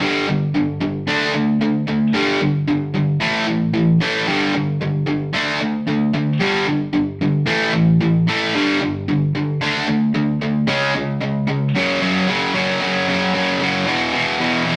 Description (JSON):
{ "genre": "rock", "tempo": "112 BPM", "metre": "4/4", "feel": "straight", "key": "unclear", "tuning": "A4 = 442 Hz", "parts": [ { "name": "distorted electric guitar", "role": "solo", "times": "0.0-14.8 s", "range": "E2 to D4", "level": "-18 LUFS", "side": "equal", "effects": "overdrive" } ], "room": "moderate studio reverb, RT60 0.7 s", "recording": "rough rehearsal-room recording, tube saturation", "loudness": "-18 LUFS", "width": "mono", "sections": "0.0-11.7 A section; 11.7-14.8 B section", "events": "none", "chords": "0.0 G5; 1.1 D5; 2.1 G5; 3.2 A5; 4.3 G5; 5.3 D5; 6.4 G5; 7.5 A5; 8.5 G5; 9.6 D5; 10.7 C#5; 11.7 F#5; 13.9 E5" }